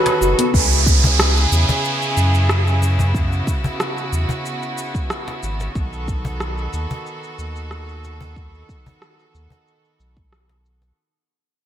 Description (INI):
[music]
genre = organic downtempo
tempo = 92 BPM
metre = 4/4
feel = straight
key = B mixolydian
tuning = A4 = 438 Hz
[part]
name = rich chamber string section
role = sustained chords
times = 0.0-10.9 s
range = C#3 to A4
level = -25 LUFS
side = right 1 dB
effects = sidechain pumping
[part]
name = deep house drum kit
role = drums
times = 0.1-10.9 s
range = hi-hat, rim click, shaker, woodblock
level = -25 LUFS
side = equal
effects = low-pass filter on perc, low-pass filter on hats, low-pass filter on snare, gated reverb
[part]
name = cajon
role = percussion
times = 0.1-10.9 s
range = none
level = -24 LUFS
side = left 1 dB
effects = none
[part]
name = buzzing marimba with soft mallets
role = arpeggios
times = 0.2-0.5 s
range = B3 to F#4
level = -22 LUFS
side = left 1 dB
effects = ping-pong delay
[part]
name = warm sub bass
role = bass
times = 0.2-10.9 s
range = F#1 to F#2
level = -19 LUFS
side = equal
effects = sidechain pumping
[part]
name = electronic kick drum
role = drums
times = 0.5-10.3 s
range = none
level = -21 LUFS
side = equal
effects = none
[part]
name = downlifter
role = sound effects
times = 0.5-5.8 s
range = none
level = -21 LUFS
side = right 4 dB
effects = none
[sound]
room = moderate plate reverb, RT60 2.2 s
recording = bright 1980s-style digital production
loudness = -16 LUFS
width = side -10 dB against mid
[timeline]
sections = 0.5-11.0 A section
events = break 0.0-0.5; band accent 0.0; fade-out 0.5-11.0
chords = 0.0 B7; 0.5 C#m7; 5.8 B7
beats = | 0.54 1.19 1.84 2.50 | 3.15 3.80 4.45 5.10 | 5.76 6.41 7.06 7.71 | 8.36 9.02 9.67 10.32